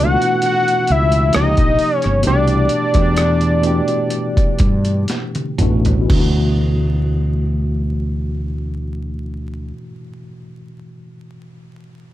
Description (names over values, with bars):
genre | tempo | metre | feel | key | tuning
R&B, neo-soul | 59-68 BPM | 4/4 | swing 54% on 16ths | D major | A4 = 440 Hz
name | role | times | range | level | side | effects
fat analog lead | melody | 0.0-5.1 s | D5 to F#5 | -17 LUFS | left 1 dB | chorus
tine electric piano | accompaniment | 0.0-12.1 s | B2 to A4 | -22 LUFS | equal | overdrive, fast stereo tremolo
fretless electric bass | bass | 0.0-9.7 s | G1 to G2 | -17 LUFS | equal | none
boom bap sampler-style drum kit | drums | 0.0-6.4 s | crash cymbal, hi-hat, kick drum, rim click, snare drum, toms | -19 LUFS | equal | none
room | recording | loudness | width
light reverb | dark, warm production, vinyl crackle | -14 LUFS | side -14 dB against mid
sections
0.0-6.1 A section; 6.1-10.2 B section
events
slowing down 0.0-6.1; drum fill 5.1-6.1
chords
0.0 Dmaj7; 1.3 C#69; 2.2 C69 (rootless); 6.1 D